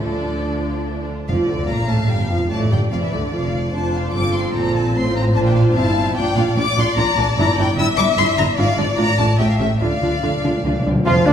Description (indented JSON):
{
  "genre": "quick classical-period movement for symphony orchestra",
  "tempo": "147 BPM",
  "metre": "3/4",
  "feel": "straight",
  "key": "D minor",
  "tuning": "A4 = 436 Hz",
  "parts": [
    { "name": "warm chamber violin section", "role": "melody", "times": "0.0-11.3 s", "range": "D5 to E6", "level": "-24 LUFS", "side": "left 4 dB", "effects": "none" },
    { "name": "rich chamber violin section", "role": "second line", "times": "0.0-11.3 s", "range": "A3 to F5", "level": "-25 LUFS", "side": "left 4 dB", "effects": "none" },
    { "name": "warm symphonic viola section", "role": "accompaniment", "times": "0.0-11.3 s", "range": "D3 to G4", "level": "-22 LUFS", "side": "right 1 dB", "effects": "none" },
    { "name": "rich chamber cello section", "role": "bass", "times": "0.0-11.3 s", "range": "D2 to D3", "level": "-22 LUFS", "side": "right 2 dB", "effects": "none" },
    { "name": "rich chamber double bass section", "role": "bass", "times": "0.0-11.3 s", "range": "F1 to D2", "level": "-22 LUFS", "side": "right 1 dB", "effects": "none" },
    { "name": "timpani", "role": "percussion", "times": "1.3-1.9, 9.8-11.0 s", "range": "D3", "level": "-24 LUFS", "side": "left 1 dB", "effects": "none" },
    { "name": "warm clarinet", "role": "second line", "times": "11.0-11.3 s", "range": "D4 to F4", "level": "-21 LUFS", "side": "left 2 dB", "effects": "none" },
    { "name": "mellow French horn section", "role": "sustained chords", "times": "11.0-11.3 s", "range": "D3 to F3", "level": "-21 LUFS", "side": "left 3 dB", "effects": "none" },
    { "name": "mellow small flute group", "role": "second line", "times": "11.1-11.3 s", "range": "D5 to F5", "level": "-25 LUFS", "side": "right 3 dB", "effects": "none" },
    { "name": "mellow bassoon", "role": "accompaniment", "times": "11.1-11.3 s", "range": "D3 to F3", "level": "-19 LUFS", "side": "right 2 dB", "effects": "none" },
    { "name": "warm trumpet", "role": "stabs", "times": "11.1-11.3 s", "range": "D4 to F4", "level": "-20 LUFS", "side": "right 2 dB", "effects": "none" }
  ],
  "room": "wet recital hall reverb, RT60 1.7 s",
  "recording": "recorded in a church or concert hall",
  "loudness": "-16 LUFS",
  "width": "side -9 dB against mid",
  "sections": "0.0-1.3 A section; 1.3-11.1 B section",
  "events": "timpani fill 9.8-11.1",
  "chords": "0.0 Dm; 3.7 F; 5.0 F/A; 6.2 Bb; 7.4 Gm6; 8.6 Ddim/Ab; 9.0 Dm/A; 9.4 A7; 9.8 Dm",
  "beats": "| 0.02 0.45 0.87 | 1.29 1.70 2.11 | 2.52 2.92 3.33 | 3.74 4.15 4.55 | 4.96 5.36 5.76 | 6.16 6.57 6.97 | 7.37 7.77 8.17 | 8.57 8.98 9.39 | 9.80 10.23 10.64 | 11.06"
}